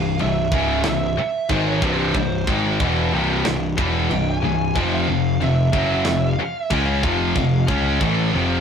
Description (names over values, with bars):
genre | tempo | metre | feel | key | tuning
heavy metal | 92 BPM | 4/4 | straight | unclear | A4 = 441 Hz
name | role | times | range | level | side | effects
high-gain lead guitar | melody | 0.0-7.6 s | C5 to Ab5 | -26 LUFS | right 4 dB | distortion
heavy high-gain guitar | riff | 0.0-8.6 s | C2 to Db4 | -22 LUFS | left 6 dB | distortion
scooped high-gain guitar | riff | 0.0-8.6 s | C2 to Db4 | -24 LUFS | right 5 dB | distortion
fuzz picked electric bass | bass | 0.0-8.6 s | C1 to Db2 | -23 LUFS | right 1 dB | overdrive
tight metal drum kit | drums | 0.2-8.2 s | china cymbal, kick drum, snare drum | -27 LUFS | equal | none
room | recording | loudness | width
light reverb | rough rehearsal-room recording, warm saturation | -17 LUFS | side -7 dB against mid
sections
0.0-8.6 A section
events
none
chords
0.0 C; 4.8 F5